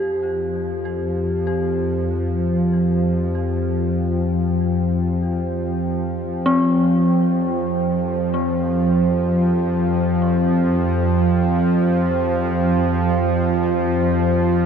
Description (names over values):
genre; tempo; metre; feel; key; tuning
dark ambient drone; free time; none; none; unclear; A4 = 440 Hz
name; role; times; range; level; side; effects
deep dark ambient pad; sustained chords; 2.5-14.7 s; F4 to G5; -31 LUFS; right 2 dB; chorus, built-in reverb
dark detuned synth bell; arpeggios; 0.0-14.7 s; C4 to G4; -25 LUFS; left 2 dB; chorus, ping-pong delay
bowed-like drone; drone; 0.0-14.7 s; F2 to F3; -18 LUFS; equal; built-in reverb
bronze singing bowl; texture; 0.0-14.7 s; G4; -31 LUFS; left 3 dB; none
room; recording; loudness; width
wet cathedral reverb, RT60 5.6 s; in a vast, echoing space, nothing above 10.6 kHz, faint mains hum; -17 LUFS; side -7 dB against mid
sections
0.0-14.7 A section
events
fade-in on ambient pad 0.0-14.7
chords
0.0 Fsus2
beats
free time